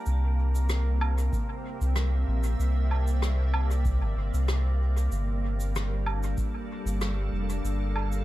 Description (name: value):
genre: ambient dub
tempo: 95 BPM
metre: 4/4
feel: straight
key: unclear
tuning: A4 = 440 Hz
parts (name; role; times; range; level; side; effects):
- soft additive organ-like pad; sustained chords; 0.0-8.2 s; C3 to F5; -35 LUFS; right 1 dB; ensemble chorus, built-in reverb
- vibraphone with hard mallets; arpeggios; 0.0-1.5 s; Bb3 to Bb5; -45 LUFS; equal; tape echo
- soft dub sub bass; bass; 0.1-8.2 s; F1 to C2; -25 LUFS; equal; none
- shaker, rim click and woodblock; drums; 0.1-8.2 s; none; -36 LUFS; right 1 dB; dub echo
- electronic kick drum; drums; 1.3-6.5 s; none; -31 LUFS; equal; none
room: studio ambience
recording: none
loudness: -25 LUFS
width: side -16 dB against mid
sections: 0.1-8.2 A section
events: none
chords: 0.1 C7; 5.1 Gm7